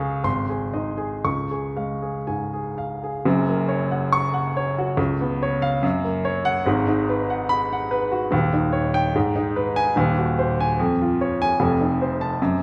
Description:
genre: classical, romantic character piece for solo piano.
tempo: 58-74 BPM.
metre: 2/4.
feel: rubato.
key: Db major, F# major from 3.3 s.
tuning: A4 = 440 Hz.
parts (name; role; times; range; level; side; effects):
warm baby grand piano; solo; 0.0-12.6 s; D#1 to Db6; -23 LUFS; equal; none.
room: wet concert hall reverb, RT60 2.2 s.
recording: none.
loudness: -23 LUFS.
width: mono.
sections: 0.0-3.3 A section; 3.3-12.6 B section.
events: none.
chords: 0.3 Ab; 1.3 Db; 3.3 F#; 5.0 C#7; 5.8 F#; 6.7 G#m7; 8.3 D#7; 9.1 G#m; 10.0 Ab7/Eb; 10.8 Db/F; 11.6 F7.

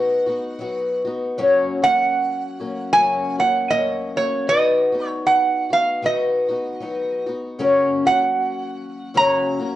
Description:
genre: acoustic folk duo or small band.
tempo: 77 BPM.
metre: 4/4.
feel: swing 59% on 8ths.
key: F# major.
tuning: A4 = 440 Hz.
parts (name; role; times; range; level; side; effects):
metal-body resonator slide guitar; melody; 0.0-9.8 s; C#5 to A#5; -18 LUFS; right 2 dB; plate reverb.
picked twelve-string acoustic guitar; accompaniment; 0.0-9.8 s; F#2 to F#4; -21 LUFS; left 2 dB; none.
room: wet large studio reverb, RT60 0.9 s.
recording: worn, warbling old tape, cassette tape, warbly pitch drift, nothing above 10.9 kHz.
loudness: -17 LUFS.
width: side -14 dB against mid.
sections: 0.0-9.8 A section.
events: none.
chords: 0.0 B/F#; 1.4 F#; 4.5 B/F#; 7.6 F#.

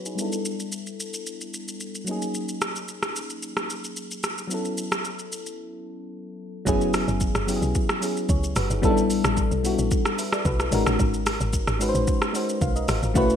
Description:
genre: amapiano.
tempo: 111 BPM.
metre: 4/4.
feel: straight.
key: unclear.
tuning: A4 = 442 Hz.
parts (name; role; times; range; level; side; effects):
mellow FM electric piano; accompaniment; 0.0-13.4 s; F#3 to E#5; -26 LUFS; left 1 dB; chorus, low-pass filter.
deep house drum kit; drums; 0.1-13.4 s; hi-hat, kick drum, rim click, shaker; -27 LUFS; equal; gated reverb.
woody log drum bass; bass; 6.7-13.4 s; F#1 to C#2; -26 LUFS; equal; none.
room: moderate plate reverb, RT60 1.3 s.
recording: bright 1980s-style digital production.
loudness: -23 LUFS.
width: side -9 dB against mid.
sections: 0.0-6.7 A section; 6.7-13.4 B section.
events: filter sweep on FM electric piano 0.0-6.7; break 5.6-6.7; drop 6.7-13.4.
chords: 0.2 A9sus4; 2.1 G#9sus4; 4.5 B9sus4; 6.7 F#9sus4; 8.8 A9sus4; 10.7 G#9sus4.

